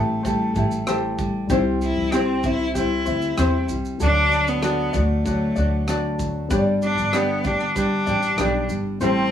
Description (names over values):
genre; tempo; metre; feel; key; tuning
acoustic pop; 96 BPM; 4/4; straight; G major; A4 = 441 Hz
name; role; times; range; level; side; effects
clear cello; melody; 0.0-9.3 s; A3 to E4; -24 LUFS; left 1 dB; none
reed electric piano; accompaniment; 0.0-9.3 s; G3 to C6; -30 LUFS; left 3 dB; none
ukulele; accompaniment; 0.0-9.3 s; C4 to D5; -25 LUFS; left 1 dB; none
nylon-string guitar; arpeggios; 0.0-9.3 s; F#3 to G4; -28 LUFS; right 2 dB; none
upright bass; bass; 0.0-9.3 s; G1 to E2; -26 LUFS; equal; none
loose indie drum kit; drums; 0.2-9.2 s; kick drum, rim click, shaker; -30 LUFS; equal; none
room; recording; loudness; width
wet studio reverb, RT60 0.5 s; band playing live in one room, small room ambience; -19 LUFS; side -9 dB against mid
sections
0.0-9.3 A section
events
none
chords
0.0 Am7; 1.5 C; 4.0 D; 6.5 G